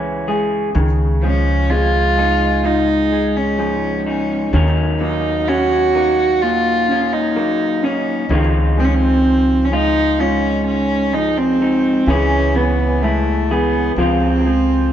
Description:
acoustic folk-pop ballad; 64 BPM; 4/4; straight; Db major; A4 = 440 Hz
electric guitar through a small old amp; accompaniment; 0.0-14.9 s; Ab2 to Bb4; -21 LUFS; left 2 dB
felt-muted upright piano; arpeggios; 0.0-14.9 s; Eb3 to F4; -23 LUFS; right 1 dB
upright bass; bass; 0.0-14.9 s; C#2 to Eb2; -20 LUFS; equal
warm cello; melody; 1.2-14.9 s; A3 to Gb4; -17 LUFS; right 1 dB
moderate plate reverb, RT60 2.7 s; heard from further back in the room, nothing above 7.8 kHz; -14 LUFS; side -10 dB against mid
0.0-14.9 A section
0.0 Amaj7/C# (rootless); 0.7 Dbmaj9; 4.5 Ebm7; 8.3 Dbmaj9; 12.1 Dbm7; 14.0 Dbmaj7

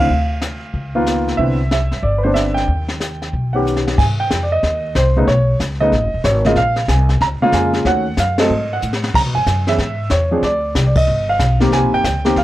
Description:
jazz piano trio; 186 BPM; 4/4; swing 64% on 8ths; Ab major from 4.0 s; A4 = 441 Hz
warm baby grand piano; melody; 0.0-12.4 s; Db3 to Bb5; -17 LUFS; right 1 dB
upright bass; bass; 0.0-12.4 s; D#1 to Db3; -18 LUFS; equal
jazz brush drum kit; drums; 0.1-12.4 s; brushed snare drum, crash cymbal, hi-hat, kick drum, ride cymbal, snare drum; -22 LUFS; left 1 dB
little or no reverb; worn, warbling old tape, cassette tape, warbly pitch drift; -14 LUFS; side -15 dB against mid
0.0-4.0 A section; 4.0-12.4 B section
drum fill 3.7-4.0, 8.8-9.1; band accent 8.3, 10.9
0.1 Dm; 0.7 Db13; 1.4 Cmaj9; 2.7 Eb7alt; 4.0 Ab; 5.3 B9; 6.6 Bbm7; 7.9 Ebm7b5; 8.5 Gbm69/Ab; 9.1 Dbm; 10.4 Csus2; 11.1 G7b13; 11.7 Cm7

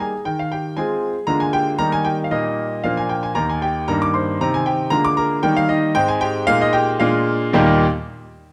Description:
classical-period piano sonatina; 115 BPM; 2/4; straight; Eb major; A4 = 440 Hz
clear baby grand piano; solo; 0.0-7.8 s; Eb2 to D6; -19 LUFS; equal
moderate recital hall reverb, RT60 1.3 s; close, detailed microphones; -19 LUFS; mono
0.0-7.5 A section
0.3 Fm7/Eb; 1.3 Bb7/D; 1.8 Eb; 2.3 Eb/Bb; 2.8 Bb; 3.4 Eb; 3.9 Eb/G; 4.4 Cm7; 4.9 Bb7/D; 5.4 Eb; 5.9 Ab; 6.5 Bb7sus4; 7.0 Bb7; 7.5 Eb

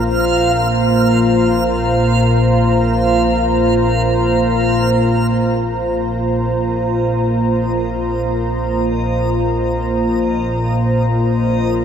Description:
dark ambient drone; free time; A4 = 436 Hz
sweeping resonant pad; sustained chords; 0.0-11.8 s; Bb3 to Bb5; -16 LUFS; equal; chorus
analog drone; drone; 0.0-11.8 s; Bb1 to Bb2; -17 LUFS; left 1 dB; wide subtle chorus
backwards swelling texture; texture; 0.0-11.8 s; Eb5 to F5; -24 LUFS; right 2 dB; built-in reverb
carillon bells; arpeggios; 5.6-11.8 s; barely audible
wet plate reverb, RT60 3.9 s; echo-heavy mix; -14 LUFS; side -8 dB against mid
0.0-5.6 A section; 5.6-11.8 B section
fade-in on synth texture 5.6-11.8
0.0 Bb5

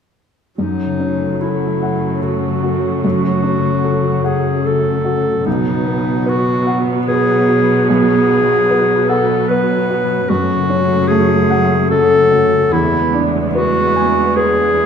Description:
cinematic; 74 BPM; 3/4; rubato; F# minor; A4 = 439 Hz
clear clarinet; second line; 0.6-14.9 s; D#4 to B4; -16 LUFS; left 1 dB
muted studio viola section; accompaniment; 0.6-14.9 s; F#3 to B3; -20 LUFS; right 5 dB
warm baby grand piano; accompaniment; 0.6-14.9 s; B1 to G#5; -20 LUFS; equal
concert harp; arpeggios; 0.6-14.9 s; F#2 to C#5; -20 LUFS; left 6 dB
muted studio cello section; bass; 0.6-14.9 s; E2 to B2; -23 LUFS; right 4 dB
wet recital hall reverb, RT60 1.4 s; minimal, uncompressed stereo recording; -12 LUFS; side -7 dB against mid
0.6-14.9 A section
0.6 F#m; 5.5 B5; 10.3 F#m; 12.7 E7

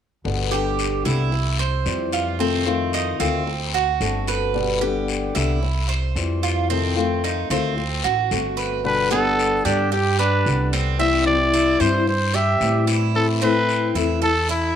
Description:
latin, Cuban son and guajira; 112 BPM; 4/4; straight; G major; A4 = 440 Hz
fingerpicked old ladder-braced acoustic guitar; accompaniment; 0.2-14.3 s; B2 to G4; -24 LUFS; left 7 dB
upright bass; bass; 0.2-14.7 s; G1 to A2; -24 LUFS; right 1 dB
guiro; percussion; 0.3-14.8 s; -31 LUFS; left 11 dB
Cuban tres; arpeggios; 0.5-14.8 s; B3 to C5; -25 LUFS; right 10 dB
growling trumpet; melody; 8.9-14.8 s; E4 to E5; -21 LUFS; equal
moderate plate reverb, RT60 2.5 s; 1960s-style stereo with parts hard left and right; -18 LUFS; side -9 dB against mid
0.2-8.8 A section; 8.8-14.8 B section
0.2 G; 1.3 C; 2.4 F7; 3.5 D7; 4.5 G; 5.6 C; 6.7 F7; 7.8 D7; 8.8 G; 11.0 C; 13.1 Am

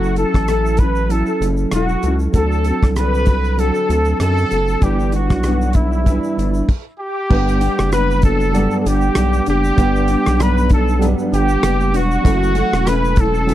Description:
indie pop, bedroom pop; 97 BPM; 4/4; swing 55% on 16ths; A4 = 439 Hz
clear trumpet; melody; 0.0-13.5 s; E4 to B4; -20 LUFS; equal; ensemble chorus, tape echo
nylon-string guitar; accompaniment; 0.0-13.5 s; F#2 to A4; -22 LUFS; left 4 dB; ensemble chorus, vibrato effect
reed electric piano; accompaniment; 0.0-13.5 s; F#3 to F#5; -22 LUFS; right 6 dB; overdrive, fast tremolo
round analog bass; bass; 0.0-13.5 s; E1 to F#2; -18 LUFS; equal
damped 70s drum kit; drums; 0.0-13.5 s; crash cymbal, hi-hat, kick drum, rim click, shaker; -17 LUFS; equal
little or no reverb; dry, close 1970s-style studio recording; -14 LUFS; side -13 dB against mid
0.0-7.3 A section; 7.3-13.5 B section
stop 6.7-7.3
0.0 F#m7; 2.3 D7; 4.8 G6; 7.3 Gmaj7; 12.2 F#m7

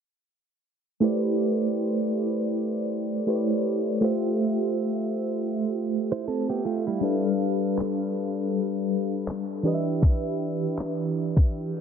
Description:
contemporary R&B; 80 BPM; 4/4; swing 58% on 16ths; A minor; A4 = 437 Hz
soft electric-piano-like synth keys; accompaniment; 1.0-11.8 s; E3 to G5; -24 LUFS; equal; chorus, phaser
direct-recorded clean electric guitar; arpeggios; 6.1-7.2 s; G3 to C5; -29 LUFS; right 6 dB; tape echo
smooth R&B drum kit; drums; 7.8-11.5 s; handclaps, kick drum; -21 LUFS; equal
reverse cymbal; sound effects; 11.7-11.8 s; -45 LUFS; left 12 dB
light reverb; dense, heavily limited modern master, low-pass filter; -24 LUFS; side -7 dB against mid
1.0-11.8 A section
filter sweep 1.0-11.8; break 11.5; reverse cymbal 11.7
1.0 Am11; 4.0 Fmaj7/A; 7.0 G7; 9.7 Em7

